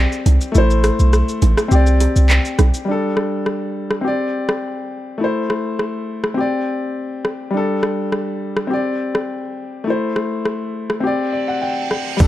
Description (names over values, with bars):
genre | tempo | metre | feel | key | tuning
dancehall | 103 BPM | 4/4 | straight | unclear | A4 = 441 Hz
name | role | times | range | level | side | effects
clear grand piano | accompaniment | 0.0-12.3 s | G3 to G5 | -20 LUFS | left 2 dB | sidechain pumping
clean 808-style bass | bass | 0.0-2.7, 12.2-12.3 s | G1 to C2 | -13 LUFS | equal | none
island pop drum kit | drums | 0.1-12.3 s | crash cymbal, handclaps, hi-hat, kick drum, rim click, shaker | -19 LUFS | equal | overdrive
bongos | percussion | 0.3-2.7 s | none | -26 LUFS | right 15 dB | none
reverse cymbal | sound effects | 11.3-12.2 s | none | -28 LUFS | right 8 dB | none
room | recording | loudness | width
little or no reverb | dark, warm production | -16 LUFS | side -14 dB against mid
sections
0.0-2.9 A section; 2.9-12.2 B section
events
kick muted 0.6-2.9; grand piano fill 11.0-12.2; reverse cymbal 11.3-12.2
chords
0.0 Csus2; 0.6 Am; 1.7 Csus2; 2.9 Gsus2; 4.0 Csus2; 5.2 Am; 6.4 Csus2; 7.5 Gsus2; 8.7 Csus2; 9.9 Am; 11.0 Csus2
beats
| 0.55 1.13 1.72 2.30 | 2.88 3.46 4.05 4.63 | 5.21 5.79 6.38 6.96 | 7.54 8.12 8.71 9.29 | 9.87 10.45 11.04 11.62 | 12.20